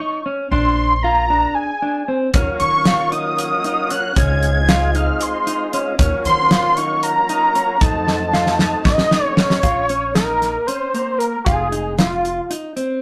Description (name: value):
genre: progressive instrumental, band music in an uneven meter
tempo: 230 BPM (eighths)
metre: 7/8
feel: straight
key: Bb minor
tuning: A4 = 440 Hz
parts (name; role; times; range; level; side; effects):
- unison lead; melody; 0.0-12.5 s; F4 to Ab6; -21 LUFS; equal; none
- mellow electric guitar; arpeggios; 0.0-13.0 s; Bb3 to F4; -25 LUFS; equal; none
- upright bass; bass; 0.5-12.4 s; F1 to Eb3; -26 LUFS; equal; none
- tonewheel organ; accompaniment; 2.3-9.6 s; Gb3 to F4; -27 LUFS; equal; slow rotary speaker
- damped 70s drum kit; drums; 2.3-12.9 s; hi-hat, kick drum, snare drum; -20 LUFS; equal; none
room: moderate studio reverb, RT60 0.6 s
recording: rough rehearsal-room recording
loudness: -18 LUFS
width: mono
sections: 0.0-9.6 A section; 9.6-13.0 B section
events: drum fill 8.1-9.6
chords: 0.0 Dbsus2/Eb; 0.5 Bb7; 2.3 Ebm7; 4.2 Dbmaj7; 6.0 Ebm7; 7.8 F7b9; 9.6 Bbmadd9; 11.5 Fm7